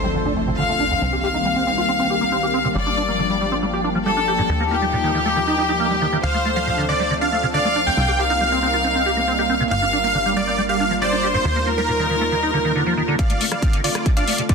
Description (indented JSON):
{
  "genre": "uplifting trance",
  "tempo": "138 BPM",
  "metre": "4/4",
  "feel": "straight",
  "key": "G minor",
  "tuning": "A4 = 440 Hz",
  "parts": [
    { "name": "clear chamber violin section", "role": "second line", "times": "0.0-13.1 s", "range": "G4 to F5", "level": "-22 LUFS", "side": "left 2 dB", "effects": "tape echo" },
    { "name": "lush unison pad", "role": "sustained chords", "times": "0.0-14.5 s", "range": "D3 to Bb4", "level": "-25 LUFS", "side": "equal", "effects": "chorus, phaser, sidechain pumping" },
    { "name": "liquid acid bass", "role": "arpeggios", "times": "0.0-14.5 s", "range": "D2 to G4", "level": "-24 LUFS", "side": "right 2 dB", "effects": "wide subtle chorus, sidechain pumping, tape echo" },
    { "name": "plucky analog bass", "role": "bass", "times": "0.0-13.2 s", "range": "G1 to Eb2", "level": "-28 LUFS", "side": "equal", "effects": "sidechain pumping" },
    { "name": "impact", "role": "sound effects", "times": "0.0-1.0 s", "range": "none", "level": "-30 LUFS", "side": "equal", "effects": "none" },
    { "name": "dense compressed supersaw", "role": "melody", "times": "6.2-14.5 s", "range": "F4 to G5", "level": "-23 LUFS", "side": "right 1 dB", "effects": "sidechain pumping, tape echo" },
    { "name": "wide unison pluck", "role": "second line", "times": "13.2-14.5 s", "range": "D5 to F5", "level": "-32 LUFS", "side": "equal", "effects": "sidechain pumping, tape echo" },
    { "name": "electronic kick drum", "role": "drums", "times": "13.2-14.5 s", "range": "none", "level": "-18 LUFS", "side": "equal", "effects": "none" },
    { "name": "house drum kit", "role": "drums", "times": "13.2-14.5 s", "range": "hi-hat, rim click", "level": "-28 LUFS", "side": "left 4 dB", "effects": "soft clipping on snare" }
  ],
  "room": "moderate huge ambient reverb, RT60 7.1 s",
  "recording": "dense, heavily limited modern master",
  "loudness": "-17 LUFS",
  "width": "side -5 dB against mid",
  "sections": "0.0-13.2 A section; 13.2-14.5 B section",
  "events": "impact 0.0-1.0; filter sweep on acid bass 0.0-13.2; build-up 13.2-14.5",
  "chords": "0.0 Dm7; 1.0 Cm7; 2.8 Gm7; 4.5 Ebadd9; 6.2 Dm7; 8.0 Cm7; 9.7 Gm7; 11.5 Ebadd9; 13.2 Dm7"
}